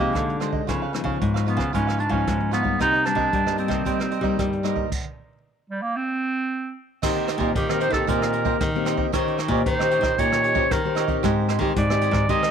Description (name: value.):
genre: samba and choro.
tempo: 114 BPM.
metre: 4/4.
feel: straight.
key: unclear.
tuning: A4 = 440 Hz.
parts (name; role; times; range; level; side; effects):
clear clarinet; melody; 0.0-12.5 s; G3 to Eb5; -24 LUFS; right 2 dB; none.
cavaquinho; accompaniment; 0.0-12.5 s; Eb4 to Ab5; -28 LUFS; right 13 dB; none.
nylon-string guitar; accompaniment; 0.0-12.5 s; G2 to C5; -28 LUFS; left 14 dB; none.
nylon-string guitar; bass; 0.0-12.5 s; Ab2 to G3; -25 LUFS; left 1 dB; none.
jazz brush drum kit; drums; 0.0-12.5 s; crash cymbal, hi-hat, kick drum, rim click; -28 LUFS; right 2 dB; none.
room: moderate spring reverb, RT60 1.3 s, small room ambience.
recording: 1960s-style stereo with parts hard left and right.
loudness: -20 LUFS.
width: side -7 dB against mid.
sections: 0.0-7.0 A section; 7.0-12.5 B section.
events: stop 4.9-7.0; clarinet solo 7.0-12.5.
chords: 0.0 Fm9; 0.7 Db9; 2.8 Cm7; 7.0 Eb6; 11.2 Abmaj7.